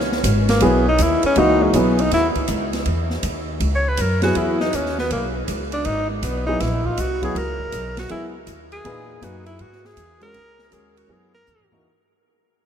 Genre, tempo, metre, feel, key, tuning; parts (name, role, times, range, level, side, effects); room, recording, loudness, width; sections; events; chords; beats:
modal jazz; 160 BPM; 4/4; swing 66% on 8ths; C# dorian; A4 = 440 Hz
upright bass; bass; 0.0-11.8 s; G#1 to G#2; -23 LUFS; equal
open jazz drum kit; drums; 0.0-11.8 s; hi-hat, kick drum, ride cymbal, snare drum, toms; -28 LUFS; right 1 dB
breathy tenor saxophone; melody; 0.5-11.7 s; G#3 to C#5; -22 LUFS; equal
warm grand piano; accompaniment; 0.6-2.0, 4.2-11.9 s; A#2 to B4; -23 LUFS; equal
wet huge ambient reverb, RT60 8.1 s; in a vast, echoing space; -17 LUFS; side -8 dB against mid
0.0-11.8 A section
fade-out 0.0-11.8; tenor saxophone solo 0.0-11.8; drum fill 11.5-11.8
0.0 C#m9
0.24 0.62 0.99 | 1.37 1.74 2.12 2.49 | 2.86 3.24 3.61 3.98 | 4.36 4.73 5.11 5.48 | 5.85 6.23 6.60 6.98 | 7.35 7.72 8.10 8.47 | 8.85 9.22 9.60 9.97 | 10.35 10.72 11.10 11.47